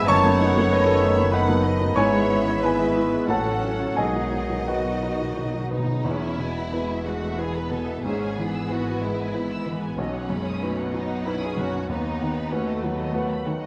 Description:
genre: classical, romantic movement for piano and orchestra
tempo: 85-97 BPM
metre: 3/4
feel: rubato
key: E major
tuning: A4 = 440 Hz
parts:
  - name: rich symphonic violin section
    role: melody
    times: 0.0-13.7 s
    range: F#4 to E6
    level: -38 LUFS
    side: equal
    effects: none
  - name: warm baby grand piano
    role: melody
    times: 0.0-13.7 s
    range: B1 to C#6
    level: -28 LUFS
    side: equal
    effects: none
  - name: bright clarinet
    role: second line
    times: 0.0-5.7 s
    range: F#4 to C#5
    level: -30 LUFS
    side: equal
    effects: none
  - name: warm symphonic violin section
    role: second line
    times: 0.0-13.5 s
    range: A3 to A5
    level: -36 LUFS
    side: equal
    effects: none
  - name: warm bassoon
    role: accompaniment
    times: 0.0-5.7 s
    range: D#3 to F#3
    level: -33 LUFS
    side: equal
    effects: none
  - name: warm symphonic viola section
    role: accompaniment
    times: 0.0-13.7 s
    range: F#3 to F#4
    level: -34 LUFS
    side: equal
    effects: none
  - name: warm trombone section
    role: sustained chords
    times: 0.0-5.7 s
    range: D#3 to E4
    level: -34 LUFS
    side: equal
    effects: none
  - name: rich symphonic double bass section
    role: bass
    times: 0.0-13.7 s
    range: E1 to D#2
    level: -36 LUFS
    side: equal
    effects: none
  - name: warm symphonic cello section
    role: bass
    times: 0.0-13.7 s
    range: D#2 to B2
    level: -34 LUFS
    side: equal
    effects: none
  - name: hollow concert flute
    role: second line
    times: 0.1-5.7 s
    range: F#5 to B5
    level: -35 LUFS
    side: equal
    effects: none
  - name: dark French horn section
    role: sustained chords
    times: 0.1-5.7 s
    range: F#3 to C#4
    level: -34 LUFS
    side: equal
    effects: none
  - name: timpani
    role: percussion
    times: 4.0-7.0 s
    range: E2 to B2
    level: -34 LUFS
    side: equal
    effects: none
room: wet scoring stage reverb, RT60 1.6 s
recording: none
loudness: -24 LUFS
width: mono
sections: 0.0-6.0 A section; 6.0-13.7 B section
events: timpani fill 4.0-6.0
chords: 0.1 B7/F#; 2.0 E/G#; 3.3 F#m/A; 4.0 B; 6.0 E; 8.0 E/G#; 10.0 B; 11.9 B/D#

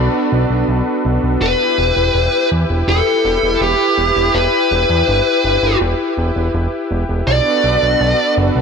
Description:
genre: synthwave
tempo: 82 BPM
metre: 4/4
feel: straight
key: unclear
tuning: A4 = 445 Hz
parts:
  - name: warm analog pad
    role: sustained chords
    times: 0.0-8.6 s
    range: B3 to B4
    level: -19 LUFS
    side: equal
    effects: chorus
  - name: fat analog bass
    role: bass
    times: 0.0-8.6 s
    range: E1 to E2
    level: -18 LUFS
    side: equal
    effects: none
  - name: fuzz lead guitar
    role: melody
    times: 1.4-8.3 s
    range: G4 to D5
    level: -16 LUFS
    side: left 1 dB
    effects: distortion, ping-pong delay
room: moderate plate reverb, RT60 3.3 s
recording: bright 1980s-style digital production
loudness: -13 LUFS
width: side -6 dB against mid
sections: 0.0-8.6 A section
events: none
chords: 0.0 Bm7; 1.4 Em; 7.3 Bm7

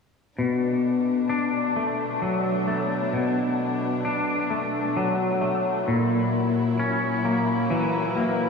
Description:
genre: rock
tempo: 44 BPM (dotted quarters)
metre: 6/8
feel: straight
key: B minor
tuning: A4 = 442 Hz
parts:
  - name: warm chamber string section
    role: sustained chords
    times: 0.4-8.5 s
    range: A#2 to E4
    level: -29 LUFS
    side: equal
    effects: none
  - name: twangy electric guitar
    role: arpeggios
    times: 0.4-8.5 s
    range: A#2 to D4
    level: -23 LUFS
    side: left 2 dB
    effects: vibrato effect, tape echo
room: wet lush hall reverb, RT60 3.1 s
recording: dreamy mix soaked in reverb, studio reverb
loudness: -22 LUFS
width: side -5 dB against mid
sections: 0.4-8.5 A section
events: none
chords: 0.4 Bm7; 5.9 F#7/A#

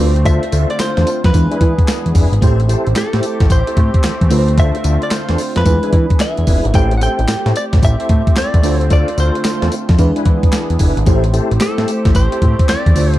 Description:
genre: R&B, new jack swing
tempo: 111 BPM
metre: 4/4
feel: swing 65% on 16ths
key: A minor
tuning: A4 = 440 Hz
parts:
  - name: direct-recorded clean electric guitar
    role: melody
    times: 0.0-13.2 s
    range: A4 to G5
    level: -22 LUFS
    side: equal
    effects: digital delay
  - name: FM electric piano with soft pad layer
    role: accompaniment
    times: 0.0-13.2 s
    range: G#3 to C5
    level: -21 LUFS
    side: right 1 dB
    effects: chorus
  - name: sweeping resonant pad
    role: sustained chords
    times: 0.0-13.2 s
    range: D3 to G#4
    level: -26 LUFS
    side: equal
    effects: chorus
  - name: fat analog bass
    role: bass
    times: 0.0-13.2 s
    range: F1 to E3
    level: -15 LUFS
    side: equal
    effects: none
  - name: tonewheel organ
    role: stabs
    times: 0.2-12.5 s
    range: D4 to C5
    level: -24 LUFS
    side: left 2 dB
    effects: overdrive, chorus vibrato, slow rotary speaker
  - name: clean 12-bit digital drum machine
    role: drums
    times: 0.2-13.2 s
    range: handclaps, hi-hat, kick drum, snare drum, tambourine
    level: -14 LUFS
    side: equal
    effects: none
room: digital ambience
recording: dark, warm production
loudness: -12 LUFS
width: side -15 dB against mid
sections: 0.0-13.2 A section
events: none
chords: 0.0 Dm7; 1.3 E7; 2.4 Am7; 4.3 Dm7; 5.7 E7; 6.7 Am7; 8.6 Dm7; 10.0 E7; 11.1 Am7

